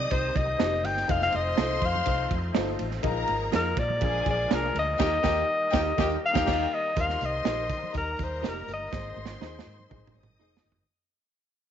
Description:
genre	uptempo 1960s-style soul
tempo	122 BPM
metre	4/4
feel	straight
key	Eb major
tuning	A4 = 440 Hz
part	breathy alto saxophone	melody	0.0-9.4 s	Bb4 to G5	-28 LUFS	left 2 dB	tape echo
part	warm studio string section	second line	0.0-10.9 s	G4 to Eb6	-34 LUFS	left 2 dB	none
part	overdriven tonewheel organ	sustained chords	0.0-10.9 s	Eb3 to Eb4	-39 LUFS	equal	slow rotary speaker, chorus vibrato
part	vintage muted fingered electric bass	bass	0.0-10.8 s	F1 to Eb3	-33 LUFS	equal	none
part	dark upright piano	accompaniment	0.1-10.7 s	Bb3 to G5	-34 LUFS	left 13 dB	none
part	crunchy breakbeat drum kit	drums	0.1-10.8 s	crash cymbal, hi-hat, kick drum, ride cymbal, snare drum, toms	-31 LUFS	right 4 dB	none
part	congas	percussion	0.4-10.8 s	none	-42 LUFS	right 9 dB	none
part	electric guitar through a small old amp	stabs	0.6-10.5 s	D4 to C5	-36 LUFS	right 12 dB	none
room	light reverb, small room reverb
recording	1960s-style stereo with parts hard left and right, nothing above 7.6 kHz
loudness	-24 LUFS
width	side -9 dB against mid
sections	0.0-7.0 A section; 7.0-10.9 B section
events	band accent 5.0-7.0; fade-out 7.0-10.9; drum fill 8.9-10.9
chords	0.0 Cm; 1.1 F7; 3.0 Bb7sus4; 4.0 Bb7; 5.0 Eb; 8.9 Ab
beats	0.11 0.60 | 1.09 1.58 2.07 2.56 | 3.05 3.54 4.03 4.51 | 5.00 5.50 5.99 6.47 | 6.96 7.46 7.95 8.44 | 8.93 9.42 9.91 10.40

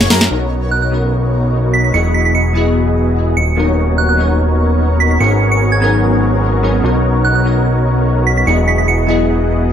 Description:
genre	future bass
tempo	147 BPM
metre	4/4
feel	half-time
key	B major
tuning	A4 = 440 Hz
part	supersaw chords	riff	0.0-9.7 s	A#3 to D#5	-18 LUFS	equal	low-pass filter
part	fat analog bass	bass	0.0-9.7 s	D#1 to F#2	-14 LUFS	equal	none
part	glassy digital keys	accompaniment	0.3-9.7 s	F#3 to D#5	-20 LUFS	left 3 dB	chorus, digital delay
part	ethereal airy pad	sustained chords	0.9-9.7 s	B3 to D#6	-24 LUFS	right 2 dB	ensemble chorus, built-in reverb, vintage 12-bit sampler grit
part	soft synth bell	melody	0.7-9.0 s	F#6 to C#7	-18 LUFS	right 4 dB	chorus, ping-pong delay
room	light reverb, digital ambience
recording	none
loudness	-11 LUFS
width	side -9 dB against mid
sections	0.3-9.7 A section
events	none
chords	0.3 Bmaj9; 1.9 Emaj9; 3.4 Bmaj9/D#; 5.2 G#m11; 6.8 Bmaj9; 8.5 Emaj9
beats	| 0.31 0.72 1.12 1.53 | 1.94 2.35 2.76 3.16 | 3.57 3.98 4.39 4.80 | 5.21 5.61 6.02 6.43 | 6.84 7.25 7.65 8.06 | 8.47 8.88 9.29 9.70

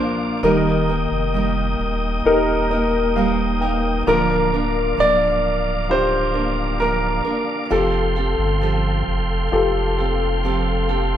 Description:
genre	pop ballad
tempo	66 BPM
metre	4/4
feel	straight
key	Bb major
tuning	A4 = 441 Hz
part	warm grand piano	melody	0.0-9.0 s	A4 to D5	-22 LUFS	right 1 dB	none
part	dark upright piano	accompaniment	0.0-11.2 s	D3 to G5	-22 LUFS	left 3 dB	none
part	tonewheel organ	sustained chords	0.0-11.2 s	Bb3 to Eb6	-25 LUFS	equal	chorus vibrato, stopped rotary speaker
part	nylon-string guitar	arpeggios	0.0-11.2 s	D3 to Bb4	-25 LUFS	right 4 dB	none
part	warm sub bass	bass	0.4-11.2 s	D1 to G1	-24 LUFS	equal	none
room	moderate large studio reverb, RT60 1.3 s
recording	band playing live in one room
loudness	-17 LUFS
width	side -10 dB against mid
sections	0.0-11.2 A section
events	upright piano fill 2.3-4.1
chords	0.4 Eb; 4.1 Bb/D; 7.7 Fadd9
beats	| 0.43 1.34 2.25 3.16 | 4.07 4.98 5.89 6.80 | 7.71 8.62 9.53 10.44

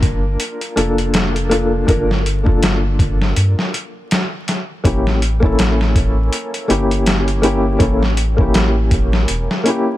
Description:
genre	trip hop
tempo	81 BPM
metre	4/4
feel	swing 57% on 16ths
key	unclear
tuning	A4 = 438 Hz
part	felt-muted upright piano	accompaniment	0.0-10.0 s	Bb3 to Bb4	-18 LUFS	left 1 dB	tremolo, tape echo
part	round analog bass	bass	0.0-9.5 s	E1 to G2	-17 LUFS	equal	none
part	dusty soul sampler-style drum kit	drums	0.0-9.9 s	hi-hat, kick drum, snare drum	-18 LUFS	equal	overdrive
room	little or no reverb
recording	vinyl crackle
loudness	-14 LUFS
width	side -15 dB against mid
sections	0.0-10.0 A section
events	none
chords	0.0 Gm9; 4.8 A7b9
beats	0.40 1.14 | 1.88 2.62 3.36 4.10 | 4.84 5.58 6.33 7.07 | 7.81 8.55 9.29

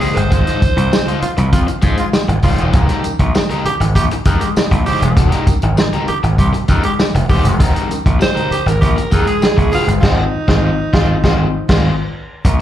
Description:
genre	funk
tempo	99 BPM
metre	4/4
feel	straight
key	F minor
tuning	A4 = 440 Hz
part	growling alto saxophone	melody	0.0-1.4, 8.2-11.8 s	Eb4 to C5	-20 LUFS	right 3 dB	slapback echo
part	growling tenor saxophone	second line	0.0-12.5 s	F4 to Bb4	-22 LUFS	right 3 dB	slapback echo
part	overdriven electric guitar	accompaniment	0.0-12.5 s	Ab3 to D5	-20 LUFS	left 5 dB	harmonic tremolo, slapback echo
part	warm soul drum kit	drums	0.0-12.6 s	crash cymbal, hi-hat, kick drum, snare drum	-15 LUFS	equal	none
part	congas	percussion	0.0-9.9 s	none	-27 LUFS	right 5 dB	slapback echo
part	tambourine	percussion	0.0-9.9 s	none	-37 LUFS	left 4 dB	none
part	gritty slap bass	bass	0.2-12.6 s	Eb1 to Ab2	-15 LUFS	equal	overdrive
room	light reverb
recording	live gig heard through the venue's PA, club reverb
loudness	-12 LUFS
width	side -12 dB against mid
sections	0.0-12.5 A section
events	band accent 10.0-12.5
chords	0.3 Ab6; 2.7 Fm11; 10.0 Ab6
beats	| 0.32 0.93 1.53 2.14 | 2.75 3.35 3.96 4.57 | 5.17 5.78 6.39 7.00 | 7.60 8.21 8.81 9.42 | 10.03 10.63 11.24 11.85 | 12.45

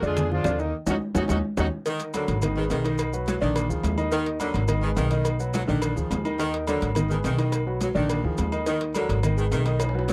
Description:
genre	latin, salsa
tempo	212 BPM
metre	4/4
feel	straight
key	Eb harmonic minor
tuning	A4 = 440 Hz
part	clear grand piano	accompaniment	0.0-10.1 s	D3 to Eb5	-31 LUFS	equal	none
part	upright bass	bass	0.0-10.1 s	Ab1 to F2	-29 LUFS	equal	none
part	congas	percussion	0.0-10.1 s	none	-34 LUFS	equal	none
part	maracas	percussion	0.0-10.1 s	none	-44 LUFS	equal	none
part	warm horn section	melody	0.1-1.7 s	Eb3 to Ab4	-31 LUFS	equal	none
part	bongos and cowbell	percussion	0.2-10.1 s	none	-37 LUFS	equal	none
part	timbales and agogo bells	percussion	0.2-10.1 s	none	-37 LUFS	equal	none
part	warm saxophone section	second line	1.9-10.1 s	D3 to F#3	-32 LUFS	equal	none
room	light reverb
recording	dry, close 1970s-style studio recording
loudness	-25 LUFS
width	mono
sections	0.0-1.9 A section; 1.9-10.1 B section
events	band accent 0.7-1.9; drum fill 1.3-1.9, 9.8-10.1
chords	0.0 Bb7 (rootless); 0.7 Ebm7; 1.9 Ebm; 2.4 Abm; 3.0 B; 3.6 Bb7; 4.1 Ebm; 4.7 Abm; 5.3 B; 5.8 Bb7; 6.4 Ebm; 7.0 Abm; 7.5 B; 8.1 Bb7; 8.7 Ebm; 9.2 Abm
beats	0.17 0.45 | 0.73 1.02 1.30 1.58 | 1.86 2.15 2.43 2.71 | 2.99 3.28 3.56 3.84 | 4.13 4.41 4.69 4.97 | 5.26 5.54 5.83 6.11 | 6.39 6.68 6.96 7.24 | 7.53 7.81 8.10 8.38 | 8.66 8.95 9.23 9.52 | 9.80 10.09

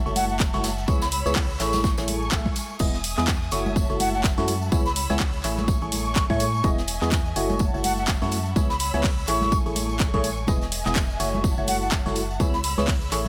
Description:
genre	piano house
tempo	125 BPM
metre	4/4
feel	swing 58% on 16ths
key	unclear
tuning	A4 = 443 Hz
part	warm studio string section	sustained chords	0.0-13.3 s	A3 to E6	-37 LUFS	equal	sidechain pumping
part	barking FM electric piano	riff	0.0-13.3 s	A3 to E5	-31 LUFS	equal	phaser, sidechain pumping
part	organ-like FM bass	bass	0.0-13.3 s	E1 to A2	-31 LUFS	equal	sidechain pumping
part	tambourine and congas	percussion	0.1-13.3 s	none	-36 LUFS	equal	none
part	breathy mellow silver concert flute	melody	0.2-12.7 s	F#5 to C#6	-31 LUFS	equal	delay
part	house drum kit	drums	0.2-13.2 s	crash cymbal, handclaps, hi-hat	-32 LUFS	equal	overdrive, small room ambience
part	soft brush drum kit	drums	0.2-13.3 s	hi-hat, snare drum, tambourine	-40 LUFS	equal	high-pass filter on hats, small room ambience, high-pass filter on snare, high-pass filter on perc, high-pass filter on room
part	electronic kick drum	drums	0.4-13.0 s	none	-26 LUFS	equal	overdrive, small room ambience
room	light reverb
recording	none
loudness	-24 LUFS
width	mono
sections	0.0-13.3 A section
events	none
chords	0.0 F#m7; 0.9 C#m7; 1.8 Amaj7; 2.8 Emaj7; 3.8 F#m7; 4.7 C#m7; 5.7 Amaj7; 6.6 Emaj7; 7.6 F#m7; 8.6 C#m7; 9.5 Amaj7; 10.5 Emaj7; 11.4 F#m7; 12.4 C#m7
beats	0.40 | 0.88 1.36 1.84 2.32 | 2.80 3.28 3.76 4.24 | 4.72 5.20 5.68 6.16 | 6.64 7.12 7.60 8.08 | 8.56 9.04 9.52 10.00 | 10.48 10.96 11.44 11.92 | 12.40 12.88

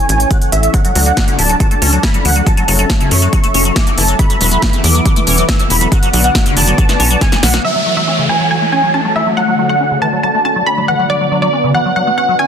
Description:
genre	uplifting trance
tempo	139 BPM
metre	4/4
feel	straight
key	F# minor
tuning	A4 = 437 Hz
part	supersaw chords	melody	0.0-12.5 s	D5 to E6	-16 LUFS	right 1 dB	wide subtle chorus, sidechain pumping, low-pass filter, ping-pong delay
part	analog string pad	sustained chords	0.0-12.5 s	D3 to E5	-19 LUFS	equal	ensemble chorus, sidechain pumping
part	tight sequencer bass	bass	0.1-7.6 s	D1 to F#2	-14 LUFS	equal	sidechain pumping
part	big-room dance drum kit	drums	0.1-7.7 s	crash cymbal, hi-hat, snare drum	-17 LUFS	equal	low-pass filter on hats, low-pass filter on snare, low-pass filter on cymbals, low-pass filter on room
part	electronic kick drum	drums	0.3-7.3 s	none	-14 LUFS	equal	none
part	liquid acid bass	arpeggios	0.7-12.5 s	C#3 to C#4	-19 LUFS	left 3 dB	phaser, wide subtle chorus, sidechain pumping, ping-pong delay
part	analog pluck	second line	7.6-12.5 s	D5 to B5	-20 LUFS	equal	chorus, sidechain pumping, ping-pong delay
part	downlifter	sound effects	7.6-11.1 s	none	-21 LUFS	equal	none
room	light reverb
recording	dense, heavily limited modern master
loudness	-10 LUFS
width	side -8 dB against mid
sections	0.0-7.6 A section; 7.6-12.5 B section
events	filter sweep on analog synth pad 0.0-7.6; drum fill 7.2-7.6; filter sweep on supersaw synth 7.6-12.5; filter sweep on acid bass 7.6-12.5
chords	0.0 A; 0.7 D; 2.5 F#m7; 4.2 Esus4; 5.9 Bm; 7.6 F#m7; 9.4 D; 11.1 Bm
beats	0.31 | 0.74 1.17 1.60 2.03 | 2.46 2.90 3.33 3.76 | 4.19 4.62 5.05 5.49 | 5.92 6.35 6.78 7.21 | 7.64 8.08 8.51 8.94 | 9.37 9.80 10.23 10.67 | 11.10 11.53 11.96 12.39

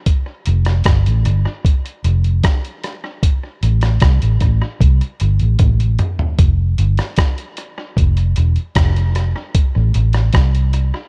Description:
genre	roots reggae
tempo	76 BPM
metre	4/4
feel	straight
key	unclear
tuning	A4 = 441 Hz
part	lo-fi sampler-style drum kit	drums	0.1-10.9 s	hi-hat, kick drum, rim click, toms	-19 LUFS	equal	analog delay
part	vintage muted fingered electric bass	bass	0.5-10.9 s	E1 to C2	-16 LUFS	equal	none
room	little or no reverb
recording	echo-heavy mix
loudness	-16 LUFS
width	mono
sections	0.0-6.4 A section; 6.4-11.1 B section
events	drum fill 5.6-6.4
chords	none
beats	| 0.07 0.86 1.65 2.44 | 3.23 4.02 4.81 5.60 | 6.38 7.17 7.96 8.76 | 9.54 10.34

